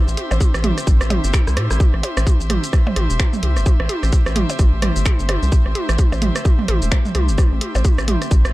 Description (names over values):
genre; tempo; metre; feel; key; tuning
minimal techno; 129 BPM; 4/4; swing 59% on 16ths; A minor; A4 = 440 Hz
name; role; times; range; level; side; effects
rich chamber string section; texture; 0.0-8.5 s; G4 to E5; -29 LUFS; left 1 dB; sidechain pumping
swarming drone; texture; 0.2-8.5 s; A3 to C4; -35 LUFS; left 2 dB; none
rubbery square bass; bass; 0.1-8.5 s; E1 to A2; -19 LUFS; equal; sidechain pumping
punchy analog drum machine; drums; 0.1-8.5 s; finger snaps, hi-hat, rim click, shaker; -26 LUFS; left 1 dB; none
minimal click drum kit; percussion; 0.2-8.5 s; percussion blips, rim click, toms; -23 LUFS; right 2 dB; none
electronic kick drum; drums; 0.4-8.4 s; none; -15 LUFS; equal; none
room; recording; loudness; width
little or no reverb; dark, warm production; -15 LUFS; side -18 dB against mid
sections
0.0-8.5 A section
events
drum fill 1.3-1.8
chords
0.0 Am